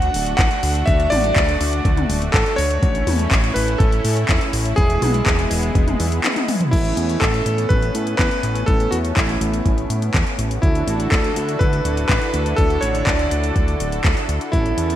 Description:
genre	italo disco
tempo	123 BPM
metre	4/4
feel	straight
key	A major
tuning	A4 = 440 Hz
part	bright electric grand piano	melody	0.0-15.0 s	E4 to F#5	-23 LUFS	right 1 dB	digital delay
part	lush unison pad	sustained chords	0.0-15.0 s	D3 to A4	-25 LUFS	equal	chorus
part	fat analog bass	bass	0.0-15.0 s	D1 to A2	-22 LUFS	equal	none
part	house drum kit	drums	0.0-15.0 s	crash cymbal, handclaps, hi-hat, toms	-24 LUFS	left 2 dB	overdrive, studio reverb, gated reverb
part	electronic kick drum	drums	0.4-14.6 s	none	-19 LUFS	equal	overdrive, studio reverb
room	moderate lush hall reverb, RT60 1.8 s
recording	bright 1980s-style digital production, vinyl crackle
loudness	-16 LUFS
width	side -12 dB against mid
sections	0.0-6.7 A section; 6.7-15.0 B section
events	drum fill 6.2-6.7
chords	0.0 D; 2.8 A; 4.8 E; 6.7 Aadd9; 10.6 Dadd9

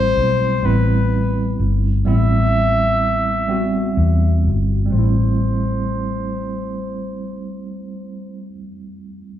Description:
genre	R&B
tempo	42 BPM (dotted quarters)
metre	6/8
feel	straight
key	A dorian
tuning	A4 = 440 Hz
part	clear flugelhorn	melody	0.0-8.5 s	B4 to E5	-22 LUFS	left 1 dB	low-pass filter
part	tine electric piano	accompaniment	0.0-9.4 s	G3 to F#4	-23 LUFS	right 1 dB	medium stereo tremolo, low-pass filter
part	vintage muted fingered electric bass	bass	0.0-8.5 s	G1 to E2	-18 LUFS	equal	none
room	wet large studio reverb, RT60 1.3 s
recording	band playing live in one room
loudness	-16 LUFS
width	side -11 dB against mid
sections	0.0-4.9 A section; 4.9-7.8 B section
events	filter sweep 0.0-4.9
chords	0.0 Am9; 4.9 Am7

